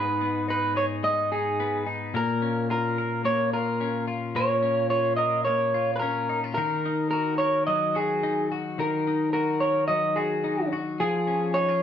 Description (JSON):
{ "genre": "indie pop", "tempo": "108 BPM", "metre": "4/4", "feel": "straight", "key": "unclear", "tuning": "A4 = 439 Hz", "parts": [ { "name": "electric guitar through a small old amp", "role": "melody", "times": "0.0-11.8 s", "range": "G#4 to D#5", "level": "-25 LUFS", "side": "right 1 dB", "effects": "none" }, { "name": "twelve-string electric guitar", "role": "arpeggios", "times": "0.0-11.8 s", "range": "G#2 to A#4", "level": "-28 LUFS", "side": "left 3 dB", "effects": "none" } ], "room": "wet large studio reverb, RT60 0.9 s", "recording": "band playing live in one room", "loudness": "-23 LUFS", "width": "side -9 dB against mid", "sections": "0.0-11.8 A section", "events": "none", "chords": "0.0 G#m; 2.1 A#m; 6.6 D#m; 11.0 C#/E#", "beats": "0.48 1.04 1.59 | 2.14 2.70 3.25 3.80 | 4.36 4.91 5.46 6.02 | 6.57 7.12 7.68 8.23 | 8.79 9.34 9.89 10.45 | 11.00 11.56" }